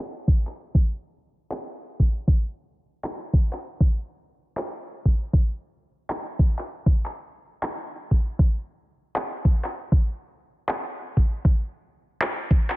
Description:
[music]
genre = future bass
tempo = 157 BPM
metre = 4/4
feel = swing 54% on 16ths, half-time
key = none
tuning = none
[part]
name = electronic kick drum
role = drums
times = 0.3-12.6 s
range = none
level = -19 LUFS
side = equal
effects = overdrive
[part]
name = electronic handclaps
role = drums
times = 0.5-12.8 s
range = none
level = -30 LUFS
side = equal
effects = overdrive
[sound]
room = little or no reverb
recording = dense, heavily limited modern master, low-pass filter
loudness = -22 LUFS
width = side -19 dB against mid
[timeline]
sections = 0.0-12.8 A section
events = filter sweep 0.0-12.8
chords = none

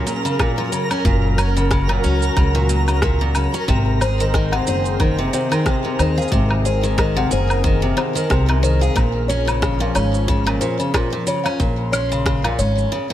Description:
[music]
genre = folktronica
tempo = 91 BPM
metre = 4/4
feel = swing 56% on 16ths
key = unclear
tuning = A4 = 440 Hz
[part]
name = warm analog pad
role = sustained chords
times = 0.0-12.9 s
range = Eb3 to C6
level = -26 LUFS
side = equal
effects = chorus
[part]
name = picked steel-string acoustic guitar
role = arpeggios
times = 0.0-13.1 s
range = Bb2 to Ab4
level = -22 LUFS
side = left 1 dB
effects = digital delay
[part]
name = twinkling granular texture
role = texture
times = 0.0-12.9 s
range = Bb4 to Bb5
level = -30 LUFS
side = right 1 dB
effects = built-in reverb
[part]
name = electronic shaker, rim click and woodblock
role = drums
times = 0.1-12.9 s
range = none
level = -25 LUFS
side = equal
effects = small room ambience
[part]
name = electronic kick drum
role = drums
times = 0.4-12.4 s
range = none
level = -20 LUFS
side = equal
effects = small room ambience
[part]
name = upright bass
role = bass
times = 1.0-12.8 s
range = Gb1 to Eb2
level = -20 LUFS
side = equal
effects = none
[part]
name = music box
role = second line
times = 4.0-12.7 s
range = C5 to Gb5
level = -25 LUFS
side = left 1 dB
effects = tape echo
[sound]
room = light reverb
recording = none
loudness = -16 LUFS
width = side -12 dB against mid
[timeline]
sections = 0.0-13.1 A section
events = break 12.9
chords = 0.0 Gbadd9; 3.7 Ab; 9.0 Bbm7

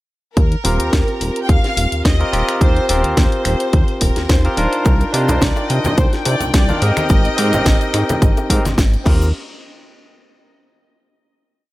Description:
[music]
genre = nu-disco, nu disco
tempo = 107 BPM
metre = 4/4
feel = swing 54% on 16ths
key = Eb major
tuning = A4 = 440 Hz
[part]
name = warm studio violin section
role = melody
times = 0.4-8.8 s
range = Bb4 to G5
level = -24 LUFS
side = equal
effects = tape echo
[part]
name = chorused synth bass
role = bass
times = 0.4-9.3 s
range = Eb1 to C3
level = -18 LUFS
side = equal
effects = none
[part]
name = electronic kick drum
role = drums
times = 0.4-9.2 s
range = none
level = -15 LUFS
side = equal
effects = none
[part]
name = house drum kit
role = drums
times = 0.4-9.2 s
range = crash cymbal, finger snaps, hi-hat, snare drum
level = -23 LUFS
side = left 1 dB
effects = none
[part]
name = barky tine electric piano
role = accompaniment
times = 0.6-9.3 s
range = C4 to Bb4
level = -21 LUFS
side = equal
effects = overdrive, slapback echo
[part]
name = bongos, cabasa and congas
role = percussion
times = 4.8-9.3 s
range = none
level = -23 LUFS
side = equal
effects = none
[part]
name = muted chamber string section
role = sustained chords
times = 4.9-9.1 s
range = G5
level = -28 LUFS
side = left 6 dB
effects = sidechain pumping
[sound]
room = digital ambience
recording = none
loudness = -13 LUFS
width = side -18 dB against mid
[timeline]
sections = 0.4-9.3 drop; 9.3-11.6 final hit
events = drop 0.4-9.3; band accent 8.8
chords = 0.4 Eb6; 4.9 Cm11; 6.8 Abmaj7; 9.1 Eb6; 9.3 N.C.

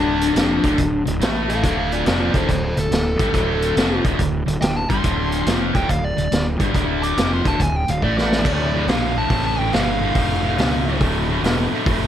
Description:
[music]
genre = blues rock power trio and southern rock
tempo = 141 BPM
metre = 4/4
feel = swing 66% on 8ths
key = D minor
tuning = A4 = 442 Hz
[part]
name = dark smooth lead guitar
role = melody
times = 0.0-11.0 s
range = D4 to D6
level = -24 LUFS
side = left 1 dB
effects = overdrive
[part]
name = sludgy distorted guitar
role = riff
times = 0.0-12.1 s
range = D2 to A3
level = -21 LUFS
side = left 1 dB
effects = overdrive
[part]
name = fuzz fingered electric bass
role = bass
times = 0.0-12.1 s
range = D1 to D2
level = -24 LUFS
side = equal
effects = overdrive
[part]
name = vintage drum kit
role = drums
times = 0.2-12.0 s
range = crash cymbal, hi-hat, kick drum, snare drum, toms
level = -22 LUFS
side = equal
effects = none
[sound]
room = light reverb, small room ambience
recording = none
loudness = -17 LUFS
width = side -10 dB against mid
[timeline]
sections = 0.0-8.5 A section; 8.5-12.1 B section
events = drum fill 8.0-8.5; lead electric guitar solo 8.5-12.1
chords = 0.0 Dm

